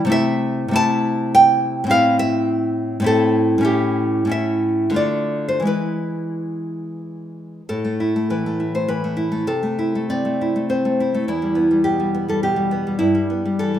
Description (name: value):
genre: romantic piece for solo classical guitar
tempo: 84-108 BPM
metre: 3/4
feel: rubato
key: A minor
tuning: A4 = 440 Hz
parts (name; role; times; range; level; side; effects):
- nylon-string guitar; solo; 0.0-13.8 s; E2 to A5; -17 LUFS; equal; none
room: moderate recital hall reverb, RT60 1.2 s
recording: minimal, uncompressed stereo recording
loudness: -17 LUFS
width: side -10 dB against mid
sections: 0.0-7.7 A section; 7.7-13.8 B section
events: none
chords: 0.1 Am/C; 1.9 Am; 3.7 A7; 5.0 Dm; 5.7 E; 7.7 A5; 9.5 Am/C; 11.3 Em; 13.0 Em/G